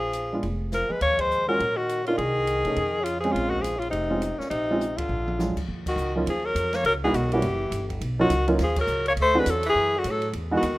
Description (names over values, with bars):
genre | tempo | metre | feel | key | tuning
jazz, small-group swing and bop | 206 BPM | 4/4 | swing 60% on 8ths | Bb minor | A4 = 437 Hz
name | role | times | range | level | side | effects
clear alto saxophone | melody | 0.0-10.8 s | Db4 to C#5 | -25 LUFS | left 1 dB | none
clear tenor saxophone | second line | 0.0-10.8 s | Bb2 to A#3 | -33 LUFS | right 2 dB | none
upright bass | bass | 0.0-10.8 s | F1 to C3 | -30 LUFS | equal | none
open jazz drum kit | drums | 0.1-10.7 s | crash cymbal, hi-hat, kick drum, ride cymbal, snare drum, toms | -37 LUFS | equal | none
warm baby grand piano | accompaniment | 0.3-10.6 s | E3 to Ab4 | -26 LUFS | right 2 dB | none
room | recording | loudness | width
light reverb, studio ambience | rough home demo mix | -22 LUFS | side -18 dB against mid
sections
0.0-5.7 A section; 5.7-10.8 B section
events
drum fill 0.7, 4.8-5.4; band accent 1.2, 5.0, 5.8, 8.7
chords
0.0 Bb7(no3); 1.0 Ebm11; 2.2 Abadd11/C; 2.8 Fm7; 3.3 Bbm9; 5.1 Bb7b13; 5.7 Ebm9; 6.8 Dbm11; 7.4 Emadd9/F#; 8.0 Bmaj9#11; 9.2 Dadd9